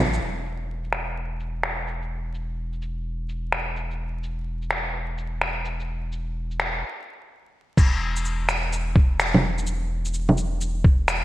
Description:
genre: future garage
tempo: 127 BPM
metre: 4/4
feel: swing 63% on 16ths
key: unclear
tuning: A4 = 441 Hz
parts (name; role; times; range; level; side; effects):
- soft dub sub bass; bass; 0.0-11.2 s; E1 to A1; -29 LUFS; equal; sidechain pumping
- lo-fi sampler-style drum kit; drums; 0.1-11.2 s; bongos, crash cymbal, finger snaps, shaker; -24 LUFS; equal; low-pass filter on perc, vintage 12-bit sampler grit, studio reverb, low-pass filter on snare, low-pass filter on cymbals, gated reverb
- electronic kick drum; drums; 7.8-11.0 s; none; -17 LUFS; equal; vintage 12-bit sampler grit, studio reverb
room: light reverb, digital ambience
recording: bright 1980s-style digital production, vinyl crackle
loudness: -23 LUFS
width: side -16 dB against mid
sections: 0.2-7.8 A section; 7.8-11.2 B section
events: stop 6.8-7.8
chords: none

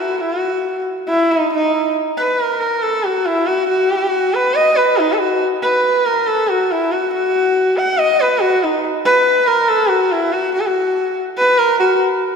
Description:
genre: indian classical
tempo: 140 BPM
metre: 4/4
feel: straight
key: unclear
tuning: A4 = 440 Hz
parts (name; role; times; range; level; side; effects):
- warm sarangi; solo; 0.0-12.0 s; Eb4 to Gb5+21c; -14 LUFS; equal; none
room: wet church reverb, RT60 2.8 s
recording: recorded in a church or concert hall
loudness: -14 LUFS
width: side -6 dB against mid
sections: 0.2-12.4 A section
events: speeding up 0.0-12.4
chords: none

